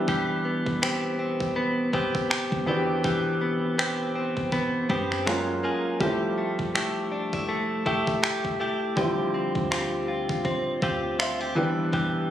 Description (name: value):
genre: contemporary R&B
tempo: 81 BPM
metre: 4/4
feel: swing 58% on 16ths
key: C major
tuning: A4 = 440 Hz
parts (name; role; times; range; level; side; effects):
- warm baby grand piano; accompaniment; 0.0-12.3 s; E3 to G5; -30 LUFS; right 1 dB; none
- direct-recorded clean electric guitar; arpeggios; 0.0-12.3 s; D3 to G#4; -26 LUFS; left 1 dB; spring reverb, ping-pong delay
- clean 808-style bass; bass; 0.1-12.3 s; D1 to F#2; -39 LUFS; right 1 dB; none
- detuned 8-bit digital drum machine; drums; 0.1-12.1 s; finger snaps, kick drum; -29 LUFS; equal; overdrive
room: light reverb, digital ambience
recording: recorded on a phone in the room, studio reverb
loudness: -24 LUFS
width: side -11 dB against mid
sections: 0.0-12.3 A section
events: grand piano fill 10.8-11.9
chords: 0.0 Cmaj7/E; 5.3 F#maj9; 6.0 Fmaj9; 9.0 Dm11; 11.6 Cmaj7